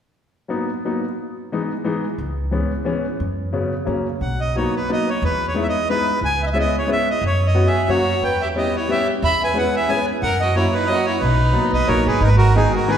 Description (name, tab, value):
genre	musette waltz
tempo	179 BPM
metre	3/4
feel	swing 55% on 8ths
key	B major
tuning	A4 = 441 Hz
part	clear upright piano	accompaniment	0.5-13.0 s	C#3 to F#4	-22 LUFS	left 2 dB	none
part	upright bass	bass	2.2-12.6 s	G#1 to F#2	-21 LUFS	equal	none
part	accordion	melody	4.2-13.0 s	D#4 to B5	-20 LUFS	right 1 dB	none
part	warm violin	second line	7.7-12.0 s	D#4 to E5	-25 LUFS	right 2 dB	none
room	wet scoring stage reverb, RT60 2.0 s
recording	recorded in a church or concert hall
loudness	-17 LUFS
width	side -9 dB against mid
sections	0.2-4.2 A section; 4.2-12.2 B section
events	none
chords	0.2 Bmaj7; 1.2 Emaj7; 2.2 C#m7; 3.2 F#sus4; 3.9 F#; 4.2 Bmaj7; 5.2 Emaj7; 6.2 C#m7; 7.2 F#sus4; 7.9 F#; 8.2 Em6; 9.2 E6; 10.2 F#7; 11.2 Bmaj7; 12.2 G#m